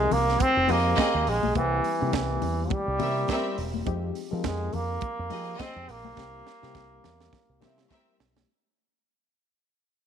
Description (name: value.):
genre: disco.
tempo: 104 BPM.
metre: 4/4.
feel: swing 56% on 16ths.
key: unclear.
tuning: A4 = 440 Hz.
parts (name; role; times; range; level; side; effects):
bright trombone; melody; 0.0-7.9 s; E3 to C4; -27 LUFS; right 1 dB; none.
reed electric piano; accompaniment; 0.0-8.5 s; F3 to Bb4; -35 LUFS; left 12 dB; tremolo.
fingered electric bass with an envelope filter; bass; 0.0-8.4 s; E1 to F3; -30 LUFS; right 1 dB; none.
tight funk drum kit; drums; 0.1-8.5 s; hi-hat, kick drum, snare drum; -33 LUFS; right 4 dB; none.
congas; percussion; 0.1-8.5 s; none; -36 LUFS; left 9 dB; none.
rich studio string section; second line; 0.7-8.2 s; C4 to E5; -32 LUFS; equal; none.
room: light reverb, small room reverb.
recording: 1960s-style stereo.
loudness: -24 LUFS.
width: side -8 dB against mid.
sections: 0.0-8.5 A section.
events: fade-out 0.0-8.5; drum fill 6.2-8.5.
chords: 0.0 Fm7; 1.6 C7; 3.9 Fm7; 6.2 C7.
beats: 0.40 0.98 | 1.56 2.13 2.71 3.29 | 3.87 4.44 5.02 5.60 | 6.17 6.75 7.33 7.90.